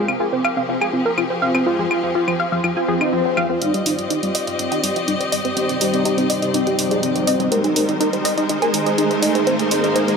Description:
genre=melodic techno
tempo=123 BPM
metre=4/4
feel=straight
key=C minor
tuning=A4 = 436 Hz
part: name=wide unison lead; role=melody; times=0.0-10.2 s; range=F3 to C5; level=-22 LUFS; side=equal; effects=ping-pong delay
part: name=clear studio string section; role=sustained chords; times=0.0-10.2 s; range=F3 to Eb5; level=-25 LUFS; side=left 3 dB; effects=none
part: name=tight sequenced synth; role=arpeggios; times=0.0-10.1 s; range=C4 to Ab5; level=-24 LUFS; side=equal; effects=chorus, phaser, dub echo
part: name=analog synth brass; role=stabs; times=0.0-10.2 s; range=G3 to C5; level=-25 LUFS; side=left 1 dB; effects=chorus, dub echo
part: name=granular cloud pad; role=texture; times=0.0-10.2 s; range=C4 to D6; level=-25 LUFS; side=equal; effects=built-in reverb
part: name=electronic claves and hi-hat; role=drums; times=0.1-10.2 s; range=none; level=-24 LUFS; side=equal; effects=none
part: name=swell and riser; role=sound effects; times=2.8-10.2 s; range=none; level=-26 LUFS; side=right 2 dB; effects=none
room=moderate lush hall reverb, RT60 2.2 s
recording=none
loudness=-17 LUFS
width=side -5 dB against mid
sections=0.0-3.6 A section; 3.6-10.2 B section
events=filter sweep on synth arpeggio sound 0.0-3.6; swell 2.8-3.6; build-up 3.6-10.2; riser 3.6-10.2; filter sweep on analog synth lead 3.6-10.2; filter sweep on analog polysynth 3.6-10.2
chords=0.0 Fm; 3.6 Cm; 7.5 Ab

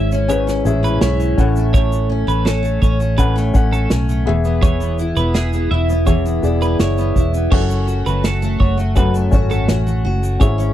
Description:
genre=acoustic pop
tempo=83 BPM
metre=4/4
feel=straight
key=unclear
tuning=A4 = 440 Hz
part: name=felt-muted upright piano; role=accompaniment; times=0.0-10.7 s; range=B3 to F#5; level=-24 LUFS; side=left 7 dB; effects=none
part: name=picked steel-string acoustic guitar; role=accompaniment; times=0.0-10.7 s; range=F#2 to F#4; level=-21 LUFS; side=equal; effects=double-tracked left and right
part: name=twelve-string electric guitar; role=arpeggios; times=0.0-10.7 s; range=G#4 to E5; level=-25 LUFS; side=right 5 dB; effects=none
part: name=vintage muted fingered electric bass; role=bass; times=0.0-10.7 s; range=E1 to B1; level=-18 LUFS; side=equal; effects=none
part: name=unplugged drum kit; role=drums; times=0.1-10.7 s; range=crash cymbal, kick drum, shaker, snare drum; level=-17 LUFS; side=equal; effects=none
room=little or no reverb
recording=dry, close 1970s-style studio recording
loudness=-14 LUFS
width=side -12 dB against mid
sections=0.0-7.5 A section; 7.5-10.7 A section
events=none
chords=0.0 C#m/G#; 1.4 A6; 4.3 E; 7.5 F#m

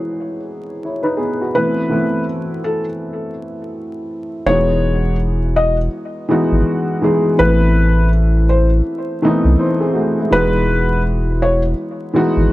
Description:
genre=lo-fi hip hop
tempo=82 BPM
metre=4/4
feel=swing 61% on 16ths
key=E major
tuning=A4 = 440 Hz
part: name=dark upright piano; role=accompaniment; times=0.0-12.5 s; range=E3 to C#5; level=-17 LUFS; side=equal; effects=cassette tape, low-pass filter
part: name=felt-muted upright piano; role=melody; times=1.5-11.6 s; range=A4 to D#5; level=-19 LUFS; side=equal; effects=low-pass filter, analog delay
part: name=round analog bass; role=bass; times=4.5-12.5 s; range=E1 to C2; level=-15 LUFS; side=equal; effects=none
room=light reverb, studio reverb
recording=vinyl crackle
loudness=-14 LUFS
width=side -17 dB against mid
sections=0.0-4.5 A section; 4.5-12.5 B section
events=none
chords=0.0 Emaj9; 1.5 Amadd9; 4.5 Emaj9; 7.4 Amadd9; 10.3 Emaj9

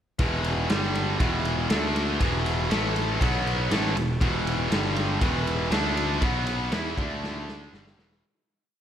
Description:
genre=classic rock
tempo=120 BPM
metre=4/4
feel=straight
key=unclear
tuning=A4 = 436 Hz
part: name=distorted electric guitar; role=riff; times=0.2-8.2 s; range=E2 to E4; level=-26 LUFS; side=equal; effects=overdrive
part: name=modern bright picked electric bass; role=bass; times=0.2-8.2 s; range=E1 to E2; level=-30 LUFS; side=equal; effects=none
part: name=raw garage drum kit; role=drums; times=0.2-8.2 s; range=kick drum, ride cymbal, snare drum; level=-28 LUFS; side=equal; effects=none
room=moderate lush hall reverb, RT60 1.7 s, small room ambience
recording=big arena sound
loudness=-23 LUFS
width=side -9 dB against mid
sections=0.2-8.2 riff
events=fade-out 6.2-8.2; drum fill 7.2-8.2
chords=0.2 E5; 0.7 G5; 1.2 E5; 1.7 D5; 2.2 E5; 2.7 A5; 3.2 B5; 3.7 E5; 4.7 G5; 5.2 E5; 5.7 D5; 6.2 B5; 6.7 E5; 7.0 D5; 7.7 E5

